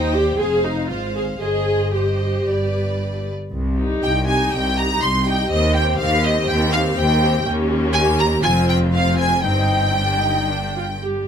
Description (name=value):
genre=quick classical-period movement for string orchestra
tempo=112-125 BPM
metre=4/4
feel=rubato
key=C minor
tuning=A4 = 440 Hz
part: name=rich studio violin section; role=melody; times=0.0-11.0 s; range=D5 to C6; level=-23 LUFS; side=equal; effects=none
part: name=clear studio violin section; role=second line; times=0.0-11.0 s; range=B4 to C6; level=-26 LUFS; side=equal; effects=none
part: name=rich studio viola section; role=accompaniment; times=0.0-11.3 s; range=C4 to Ab4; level=-22 LUFS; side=equal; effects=none
part: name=rich studio cello section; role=bass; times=0.0-11.3 s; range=C2 to Ab2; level=-23 LUFS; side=right 1 dB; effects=none
part: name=warm studio double bass section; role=bass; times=0.0-11.3 s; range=F1 to Eb2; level=-23 LUFS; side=equal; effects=none
room=light reverb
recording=close, detailed microphones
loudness=-16 LUFS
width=side -8 dB against mid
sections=0.0-3.5 A section; 3.5-11.3 B section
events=none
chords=0.4 Fm; 1.4 Cm/G; 2.5 G; 3.5 Cm; 5.5 Cm/Eb; 7.5 Eb7; 8.4 F5; 9.5 Cm/G; 10.5 G5